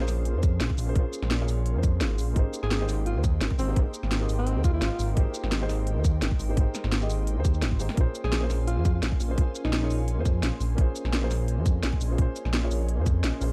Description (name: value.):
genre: liquid drum and bass.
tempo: 171 BPM.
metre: 4/4.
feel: swing 53% on 16ths.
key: Bb dorian.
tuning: A4 = 440 Hz.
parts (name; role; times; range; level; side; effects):
felt-muted upright piano; accompaniment; 0.0-13.5 s; Bb3 to Eb5; -37 LUFS; equal; delay.
glassy FM pad; sustained chords; 0.0-13.5 s; Db4 to C6; -44 LUFS; equal; ensemble chorus, built-in reverb, sidechain pumping.
dark detuned saw bass; bass; 0.0-13.5 s; Ab1 to F2; -29 LUFS; equal; none.
drum and bass drum kit; drums; 0.1-13.5 s; hi-hat, shaker, snare drum; -34 LUFS; equal; none.
electronic kick drum; drums; 0.4-13.1 s; none; -26 LUFS; equal; none.
breathy alto saxophone; melody; 2.6-5.1, 8.2-10.0 s; C4 to Ab4; -36 LUFS; equal; digital delay.
room: digital ambience.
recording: dark, warm production.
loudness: -26 LUFS.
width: mono.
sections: 0.0-13.5 A section.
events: none.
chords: 0.0 Bbm9; 2.4 Abmaj9; 8.0 Bbm9.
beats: 0.25 0.60 | 0.96 1.31 1.66 2.01 | 2.36 2.71 3.06 3.41 | 3.76 4.11 4.46 4.82 | 5.17 5.52 5.87 6.22 | 6.57 6.92 7.27 7.62 | 7.97 8.32 8.68 9.03 | 9.38 9.73 10.08 10.43 | 10.78 11.13 11.48 11.83 | 12.18 12.54 12.89 13.24.